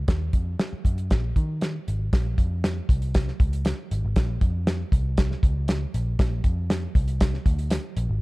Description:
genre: uptempo 1960s-style soul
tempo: 118 BPM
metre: 4/4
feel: straight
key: Bb minor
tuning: A4 = 440 Hz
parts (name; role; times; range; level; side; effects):
- vintage muted picked electric bass; bass; 0.0-8.2 s; Ab1 to Eb3; -26 LUFS; equal; none
- warm soul drum kit; drums; 0.1-8.1 s; hi-hat, kick drum, snare drum; -23 LUFS; equal; none
room: little or no reverb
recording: dark, warm production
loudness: -22 LUFS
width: side -22 dB against mid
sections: 0.0-2.1 A section; 2.1-8.2 B section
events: none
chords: none

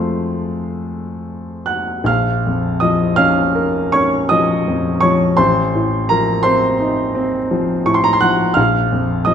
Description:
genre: classical, romantic nocturne for solo piano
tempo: 50-60 BPM (dotted quarters)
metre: 9/8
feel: rubato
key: Bb minor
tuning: A4 = 437 Hz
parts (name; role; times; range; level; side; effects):
- warm grand piano; solo; 0.0-9.3 s; A1 to Gb6; -14 LUFS; equal; none
room: wet recital hall reverb, RT60 1.7 s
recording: none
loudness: -14 LUFS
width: side -8 dB against mid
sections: 0.0-2.1 A section; 2.1-9.3 B section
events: none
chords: 0.0 F; 2.1 Bbm; 5.4 F7/A; 8.6 Bb5

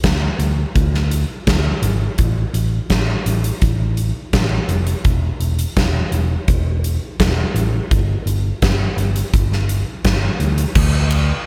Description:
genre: quiet-loud alternative rock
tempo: 84 BPM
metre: 4/4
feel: straight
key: unclear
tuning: A4 = 440 Hz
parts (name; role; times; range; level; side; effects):
- picked electric bass; bass; 0.0-11.3 s; E1 to D2; -20 LUFS; equal; none
- huge arena drum kit; drums; 0.0-11.3 s; crash cymbal, hi-hat, kick drum, ride cymbal, snare drum; -21 LUFS; equal; none
room: light reverb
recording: none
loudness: -18 LUFS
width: mono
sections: 0.0-10.8 A section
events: none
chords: none

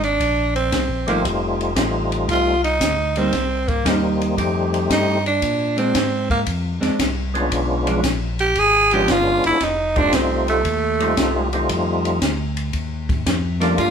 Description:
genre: soul jazz organ trio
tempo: 115 BPM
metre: 4/4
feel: swing 68% on 8ths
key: F mixolydian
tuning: A4 = 440 Hz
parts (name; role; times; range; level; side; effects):
- growling tenor saxophone; melody; 0.0-13.9 s; A3 to G#4; -19 LUFS; right 2 dB; none
- tonewheel organ; bass; 0.0-13.9 s; F1 to Bb2; -24 LUFS; left 1 dB; overdrive, chorus vibrato, slow rotary speaker
- compact cocktail drum kit; drums; 0.0-13.9 s; hi-hat, kick drum, ride cymbal, snare drum; -24 LUFS; left 1 dB; none
- percussive tonewheel organ; melody; 1.1-13.9 s; G3 to G4; -22 LUFS; left 1 dB; overdrive, chorus vibrato, stopped rotary speaker
- vintage hollow-body jazz guitar; accompaniment; 1.1-9.1, 13.6-13.8 s; F3 to G4; -23 LUFS; right 2 dB; none
room: moderate large studio reverb, RT60 1.2 s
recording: band playing live in one room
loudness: -17 LUFS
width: side -7 dB against mid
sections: 0.0-13.9 A section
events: tenor saxophone solo 0.0-13.9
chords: 0.0 Bb9; 1.2 F9; 3.3 Cm7; 4.4 F9; 5.4 Bb9; 7.5 Bdim7; 9.6 F9

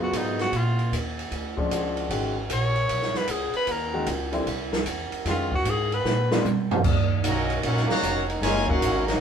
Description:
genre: jazz, big band swing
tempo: 152 BPM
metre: 4/4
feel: swing 66% on 8ths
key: Eb minor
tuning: A4 = 441 Hz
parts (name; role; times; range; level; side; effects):
- bright tenor saxophone; melody; 0.0-6.5 s; Eb4 to Db5; -27 LUFS; left 1 dB; none
- clear concert grand piano; accompaniment; 0.0-6.4 s; Db3 to Gb4; -29 LUFS; left 1 dB; none
- upright bass; bass; 0.0-9.2 s; F1 to Cb3; -29 LUFS; equal; none
- open jazz drum kit; drums; 0.1-9.1 s; crash cymbal, hi-hat, kick drum, ride cymbal, snare drum, toms; -27 LUFS; right 2 dB; none
- bright trombone section; sustained chords; 6.9-9.2 s; Eb3 to Eb4; -34 LUFS; equal; none
- clear trombone section; second line; 7.2-9.2 s; Db3 to Gb4; -27 LUFS; equal; none
- brilliant trumpet section; melody; 7.3-9.2 s; Db4 to Bb5; -28 LUFS; left 1 dB; none
room: moderate studio reverb, RT60 0.9 s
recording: band playing live in one room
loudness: -22 LUFS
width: side -7 dB against mid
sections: 0.0-6.8 A section; 6.8-9.2 B section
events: tenor saxophone solo 0.0-6.8; drum fill 6.1-6.8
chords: 0.0 Ebm9; 0.5 Bb7#9; 2.1 Abm9; 3.7 Ebm7; 4.5 C; 5.3 Fm7; 6.1 Bb7b9; 6.8 Ebm9

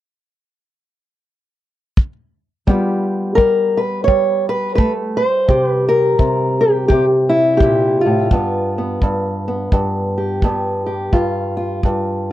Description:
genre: acoustic country blues, solo or duo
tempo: 85 BPM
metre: 4/4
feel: swing 61% on 8ths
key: G mixolydian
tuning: A4 = 440 Hz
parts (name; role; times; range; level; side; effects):
- kick drum; drums; 2.0-12.0 s; none; -15 LUFS; equal; none
- fingerpicked old ladder-braced acoustic guitar; melody; 2.7-12.3 s; G2 to C#5; -15 LUFS; equal; none
room: light reverb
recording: dry, close 1970s-style studio recording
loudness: -14 LUFS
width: side -14 dB against mid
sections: 0.0-2.7 A section; 2.7-12.3 B section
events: none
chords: 0.0 N.C.; 2.7 G7; 5.5 C7; 8.3 G7

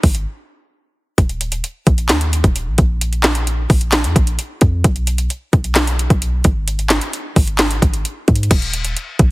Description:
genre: hip hop, trap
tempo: 131 BPM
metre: 4/4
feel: half-time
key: unclear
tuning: A4 = 436 Hz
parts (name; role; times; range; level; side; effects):
- warm 808-style bass; bass; 0.0-9.3 s; Eb1 to Ab2; -18 LUFS; equal; none
- trap drum kit; drums; 0.0-9.3 s; crash cymbal, handclaps, hi-hat, kick drum, snare drum; -15 LUFS; equal; none
room: little or no reverb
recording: heavily compressed radio sound, multiband compression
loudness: -14 LUFS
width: side -21 dB against mid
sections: 0.0-8.5 A section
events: break 0.3-1.2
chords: none

